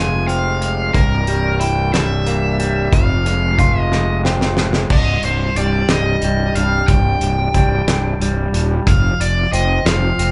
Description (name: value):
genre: post-rock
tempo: 61 BPM (dotted quarters)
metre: 6/8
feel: straight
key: unclear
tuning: A4 = 442 Hz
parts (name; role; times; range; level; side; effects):
- overdriven electric guitar; melody; 0.0-10.3 s; Bb4 to Ab5; -23 LUFS; equal; none
- electric guitar through a small old amp; arpeggios; 0.0-10.3 s; C2 to F4; -24 LUFS; equal; none
- fuzz fingered electric bass; bass; 0.0-10.3 s; C1 to F1; -21 LUFS; equal; overdrive
- loose indie drum kit; drums; 0.3-10.3 s; crash cymbal, hi-hat, kick drum, snare drum; -20 LUFS; equal; none
room: light reverb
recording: band playing live in one room, nothing above 10.8 kHz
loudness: -16 LUFS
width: mono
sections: 0.0-4.9 A section; 4.9-10.3 B section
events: drum fill 3.9-4.9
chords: 0.0 Fm; 0.9 C7; 2.9 Fm; 4.9 Cm; 8.9 F7(no3)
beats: | 0.95 1.94 | 2.93 3.92 | 4.91 5.89 | 6.88 7.87 | 8.86 9.85